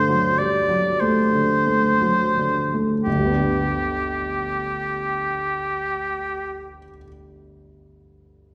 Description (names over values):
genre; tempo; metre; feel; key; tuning
classical, romantic duo for oboe and grand piano; 26-34 BPM (dotted quarters); 6/8; rubato; G major; A4 = 437 Hz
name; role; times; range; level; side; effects
clear oboe; melody; 0.0-6.7 s; G4 to D5; -24 LUFS; equal; none
clear grand piano; accompaniment; 0.0-8.5 s; G1 to G4; -25 LUFS; equal; none
room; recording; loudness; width
wet recital hall reverb, RT60 1.5 s; heard from further back in the room; -22 LUFS; mono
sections
0.0-3.1 A section; 3.1-6.8 B section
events
slowing down 0.0-3.1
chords
0.0 D7/G; 3.1 G